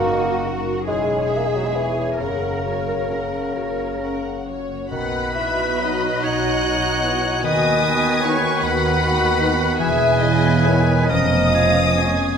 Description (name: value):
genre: classical, slow romantic movement for symphony orchestra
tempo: 43-52 BPM (dotted quarters)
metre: 6/8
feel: rubato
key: B major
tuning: A4 = 440 Hz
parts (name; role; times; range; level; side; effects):
- warm symphonic violin section; melody; 0.0-12.4 s; C#5 to F#6; -26 LUFS; left 3 dB; none
- warm symphonic violin section; second line; 0.0-12.4 s; F#4 to G#5; -27 LUFS; left 3 dB; none
- dark symphonic viola section; accompaniment; 0.0-12.4 s; B3 to G#4; -29 LUFS; right 1 dB; none
- mellow bassoon; accompaniment; 0.0-12.1 s; C#3 to A#3; -26 LUFS; right 1 dB; none
- concert harp; arpeggios; 0.0-12.4 s; E2 to F#5; -29 LUFS; left 6 dB; none
- dark symphonic double bass section; bass; 0.0-12.2 s; E1 to D#2; -26 LUFS; right 4 dB; none
- warm symphonic cello section; bass; 0.0-12.2 s; D#2 to A#4; -26 LUFS; right 2 dB; none
- bright small flute group; second line; 4.9-12.1 s; G#4 to F#5; -24 LUFS; left 1 dB; none
- clear oboe; second line; 4.9-12.4 s; G#4 to C#5; -25 LUFS; right 1 dB; none
- mellow clarinet; second line; 4.9-12.1 s; C#4 to F#4; -30 LUFS; right 1 dB; none
- mellow French horn section; sustained chords; 5.8-12.1 s; B3 to E4; -29 LUFS; left 3 dB; none
room: moderate scoring stage reverb, RT60 1.7 s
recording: minimal, uncompressed stereo recording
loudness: -17 LUFS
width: side -7 dB against mid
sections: 0.0-4.9 A section; 4.9-12.4 B section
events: none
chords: 0.0 D#m/F#; 0.9 C#m/E; 2.2 F#; 4.9 B; 7.4 B/D#; 9.8 E; 11.1 C#7/E#